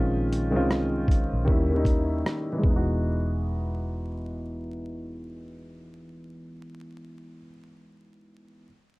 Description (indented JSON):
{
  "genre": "lo-fi hip hop",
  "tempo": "77 BPM",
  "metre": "4/4",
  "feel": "swing 63% on 16ths",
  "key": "E major",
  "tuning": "A4 = 440 Hz",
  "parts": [
    { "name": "warm upright piano", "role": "accompaniment", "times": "0.0-8.7 s", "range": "D#3 to F#4", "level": "-29 LUFS", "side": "equal", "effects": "cassette tape, low-pass filter" },
    { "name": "vintage muted fingered electric bass", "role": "bass", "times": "0.0-7.5 s", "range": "E1 to D#2", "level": "-29 LUFS", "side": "equal", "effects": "none" },
    { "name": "boom bap sampler-style drum kit", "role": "drums", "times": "0.3-2.9 s", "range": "hi-hat, kick drum, rim click", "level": "-24 LUFS", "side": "equal", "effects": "none" }
  ],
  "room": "light reverb",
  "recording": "dark, warm production, vinyl crackle",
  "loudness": "-24 LUFS",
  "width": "side -22 dB against mid",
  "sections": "0.0-3.0 A section; 3.0-6.1 B section",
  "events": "filter sweep on upright piano 0.0-3.0",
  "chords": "0.0 A#m11; 1.5 D#7b9; 2.6 Emaj9",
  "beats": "0.69 1.47 2.25 | 3.02 3.80 4.58 5.36"
}